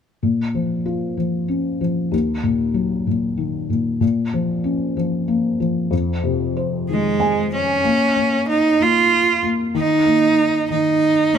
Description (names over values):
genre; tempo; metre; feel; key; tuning
pop; 63 BPM (dotted quarters); 6/8; straight; Bb minor; A4 = 439 Hz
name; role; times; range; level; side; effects
felt-muted upright piano; accompaniment; 0.2-11.4 s; Eb2 to Ab5; -20 LUFS; left 3 dB; none
bright cello; melody; 6.9-11.4 s; Ab3 to F4; -16 LUFS; right 3 dB; none
room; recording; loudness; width
moderate echo chamber reverb, RT60 2.1 s; none; -17 LUFS; side -8 dB against mid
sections
0.2-7.8 A section; 7.8-11.4 B section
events
felt piano fill 6.9-7.8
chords
0.2 Bbm; 2.1 Ebm; 4.0 Bbm; 5.9 Fm7; 7.8 N.C.; 9.8 Eb5